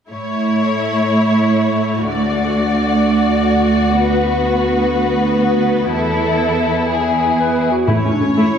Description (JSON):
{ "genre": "cinematic, heroic adventure film score", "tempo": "124 BPM (dotted quarters)", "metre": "12/8", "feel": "straight", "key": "A major", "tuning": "A4 = 439 Hz", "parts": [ { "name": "clear symphonic violin section", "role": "melody", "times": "0.1-8.6 s", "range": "G#4 to D5", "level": "-20 LUFS", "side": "left 4 dB", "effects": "none" }, { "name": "rich symphonic violin section", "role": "second line", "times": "0.1-7.7 s", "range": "E4 to F#4", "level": "-20 LUFS", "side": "left 3 dB", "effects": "none" }, { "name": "rich symphonic viola section", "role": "accompaniment", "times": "0.1-8.5 s", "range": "A3 to E4", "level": "-20 LUFS", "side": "equal", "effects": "none" }, { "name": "rich symphonic cello section", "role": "bass", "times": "0.1-8.4 s", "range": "D2 to A2", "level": "-18 LUFS", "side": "right 4 dB", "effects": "none" }, { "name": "warm clarinet", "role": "second line", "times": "7.4-8.6 s", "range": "C#4 to B4", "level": "-19 LUFS", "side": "right 1 dB", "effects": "none" }, { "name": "timpani", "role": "percussion", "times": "7.9-8.3 s", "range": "A2", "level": "-20 LUFS", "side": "equal", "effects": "none" } ], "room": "wet scoring stage reverb, RT60 1.6 s", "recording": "heard from further back in the room", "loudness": "-13 LUFS", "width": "side -8 dB against mid", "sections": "0.1-7.9 A section", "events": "none", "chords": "0.1 A; 2.1 D; 4.0 Bm/D; 5.9 Esus4; 7.9 A", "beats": "| 0.11 0.60 1.09 1.57 | 2.06 2.54 3.02 3.50 | 3.99 4.47 4.95 5.43 | 5.91 6.40 6.89 7.38 | 7.88 8.37" }